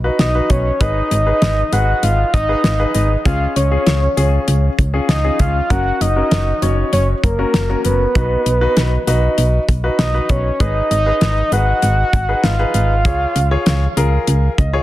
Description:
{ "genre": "synth-pop", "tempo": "98 BPM", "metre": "4/4", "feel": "straight", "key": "unclear", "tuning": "A4 = 440 Hz", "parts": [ { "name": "clear baby grand piano", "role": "accompaniment", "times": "0.0-14.8 s", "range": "C#4 to D#5", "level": "-22 LUFS", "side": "left 2 dB", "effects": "none" }, { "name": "solid FM bass", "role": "bass", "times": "0.0-14.8 s", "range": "F#1 to C#2", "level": "-17 LUFS", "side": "equal", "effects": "none" }, { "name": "soft octave-layered synth lead", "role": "melody", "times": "0.2-13.9 s", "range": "A#4 to F#5", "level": "-19 LUFS", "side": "equal", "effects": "chorus, tape echo" }, { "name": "damped 70s drum kit", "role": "drums", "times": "0.2-14.7 s", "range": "hi-hat, kick drum, snare drum", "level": "-18 LUFS", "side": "equal", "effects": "none" } ], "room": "light reverb", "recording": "dense, heavily limited modern master", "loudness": "-13 LUFS", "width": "side -15 dB against mid", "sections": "0.0-14.8 A section", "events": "grand piano fill 14.3-14.8", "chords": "0.0 B; 0.8 G#m; 3.3 C#; 5.7 F#; 8.2 B; 10.6 G#m; 13.1 C#", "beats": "0.19 | 0.81 1.42 2.03 2.64 | 3.25 3.87 4.48 5.09 | 5.70 6.32 6.93 7.54 | 8.15 8.77 9.38 9.99 | 10.60 11.21 11.83 12.44 | 13.05 13.66 14.28" }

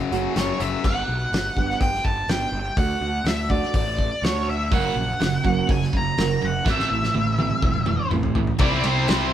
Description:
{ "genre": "quiet-loud alternative rock", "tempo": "124 BPM", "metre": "4/4", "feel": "straight", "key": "unclear", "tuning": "A4 = 440 Hz", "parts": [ { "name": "tight distorted guitar", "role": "riff", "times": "0.0-0.8, 8.6-9.3 s", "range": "F#2 to E4", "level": "-27 LUFS", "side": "left 8 dB", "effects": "distortion" }, { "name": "fuzz picked electric bass", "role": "bass", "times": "0.0-9.3 s", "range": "E1 to D2", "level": "-27 LUFS", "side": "equal", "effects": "overdrive" }, { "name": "fingerpicked steel-string acoustic guitar", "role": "arpeggios", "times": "0.1-8.4 s", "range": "D3 to G4", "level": "-29 LUFS", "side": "right 7 dB", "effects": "none" }, { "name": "loose indie drum kit", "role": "drums", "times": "0.1-9.2 s", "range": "crash cymbal, hi-hat, kick drum, ride cymbal, snare drum, toms", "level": "-24 LUFS", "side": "equal", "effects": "none" }, { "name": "octave-fuzz lead guitar", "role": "melody", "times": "0.4-9.3 s", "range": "C5 to A#5", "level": "-26 LUFS", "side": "left 1 dB", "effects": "distortion" }, { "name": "distorted electric guitar", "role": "riff", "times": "4.7-9.3 s", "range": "F#2 to E4", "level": "-25 LUFS", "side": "right 6 dB", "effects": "overdrive" }, { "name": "scooped high-gain guitar", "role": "riff", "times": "8.6-9.3 s", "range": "C3 to C4", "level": "-31 LUFS", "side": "left 1 dB", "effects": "none" } ], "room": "moderate stone room reverb, RT60 1.3 s", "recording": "band playing live in one room", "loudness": "-20 LUFS", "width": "side -10 dB against mid", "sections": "0.8-8.6 A section", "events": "drum fill 6.7-8.6", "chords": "0.0 F#m; 0.8 G; 2.8 D; 4.7 F#; 6.7 Am; 8.6 C", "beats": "0.36 | 0.84 1.32 1.81 2.29 | 2.78 3.26 3.75 4.23 | 4.72 5.20 5.69 6.17 | 6.66 7.14 7.63 8.12 | 8.60 9.08" }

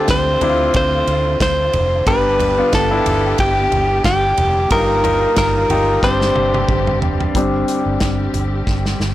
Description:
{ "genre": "piano-driven pop", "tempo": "91 BPM", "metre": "4/4", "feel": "swing 56% on 16ths", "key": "unclear", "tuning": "A4 = 439 Hz", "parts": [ { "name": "direct-recorded clean electric guitar", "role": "melody", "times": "0.0-7.0 s", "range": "G4 to C5", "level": "-16 LUFS", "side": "equal", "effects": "none" }, { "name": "clear baby grand piano", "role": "accompaniment", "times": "0.0-9.1 s", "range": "G2 to Bb4", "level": "-20 LUFS", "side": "left 2 dB", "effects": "none" }, { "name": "muted studio string section", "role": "sustained chords", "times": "0.0-9.1 s", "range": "D3 to G4", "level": "-26 LUFS", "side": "left 1 dB", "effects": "none" }, { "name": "vintage muted fingered electric bass", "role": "bass", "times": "0.1-9.1 s", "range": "F1 to D2", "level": "-21 LUFS", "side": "equal", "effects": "none" }, { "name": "natural country drum kit", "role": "drums", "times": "0.1-9.1 s", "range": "hi-hat, kick drum, ride cymbal, snare drum, toms", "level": "-21 LUFS", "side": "right 1 dB", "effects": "none" } ], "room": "light reverb, small room ambience", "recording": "blown-out, overdriven recording, overdrive", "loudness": "-14 LUFS", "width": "side -14 dB against mid", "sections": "0.0-7.3 A section; 7.3-9.1 B section", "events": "drum fill 6.0-7.3, 8.7-9.1; grand piano solo 7.3-9.1", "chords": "0.0 Dm7; 2.1 G; 4.7 Ebadd9/G; 6.0 Gsus4", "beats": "0.09 0.75 1.41 | 2.07 2.73 3.39 4.05 | 4.71 5.37 6.03 6.69 | 7.35 8.01 8.67" }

